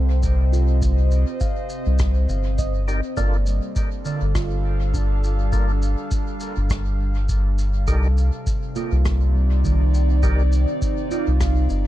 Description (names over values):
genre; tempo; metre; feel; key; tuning
ambient dub; 102 BPM; 4/4; swing 56% on 16ths; G minor; A4 = 438 Hz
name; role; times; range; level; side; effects
warbly tape-like pad; sustained chords; 0.0-11.9 s; C3 to F5; -29 LUFS; right 1 dB; chorus, built-in reverb, phaser
handpan; arpeggios; 0.0-11.9 s; D3 to F5; -32 LUFS; right 5 dB; dub echo
round analog bass; bass; 0.0-11.9 s; G1 to C2; -18 LUFS; equal; none
electronic kick drum; drums; 0.2-11.5 s; none; -25 LUFS; equal; none
shaker and rim click; drums; 0.2-11.8 s; none; -36 LUFS; left 1 dB; dub echo
percussive tonewheel organ; stabs; 2.9-10.4 s; Bb3 to D5; -35 LUFS; left 1 dB; overdrive, chorus vibrato, slow rotary speaker, dub echo
room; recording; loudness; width
small room ambience; echo-heavy mix; -18 LUFS; side -14 dB against mid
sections
0.0-11.9 A section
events
none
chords
0.0 Cm; 3.2 Gm7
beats
0.23 | 0.82 1.41 2.00 2.58 | 3.17 3.76 4.35 4.94 | 5.53 6.11 6.70 7.29 | 7.88 8.47 9.05 9.64 | 10.23 10.82 11.41